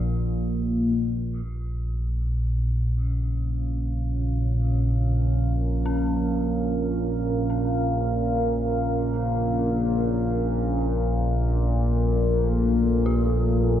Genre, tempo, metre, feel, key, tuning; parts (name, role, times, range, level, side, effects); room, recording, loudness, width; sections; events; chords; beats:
dark ambient drone; free time; Bb minor; A4 = 439 Hz
dark detuned synth bell; arpeggios; 0.0-13.8 s; Db4 to G4; -41 LUFS; left 1 dB; chorus, dub echo
analog drone; drone; 0.0-13.8 s; Bb1 to Bb2; -23 LUFS; equal; chorus, phaser
deep dark ambient pad; sustained chords; 3.0-13.8 s; Bb3 to G5; -27 LUFS; right 1 dB; chorus, built-in reverb
light reverb, digital ambience; echo-heavy mix; -22 LUFS; side -10 dB against mid
0.0-1.5 A section; 1.5-13.8 B section
fade-in on synth bell 1.5-13.8
0.0 Gm; 1.5 Bbm; 10.2 Gmadd9
free time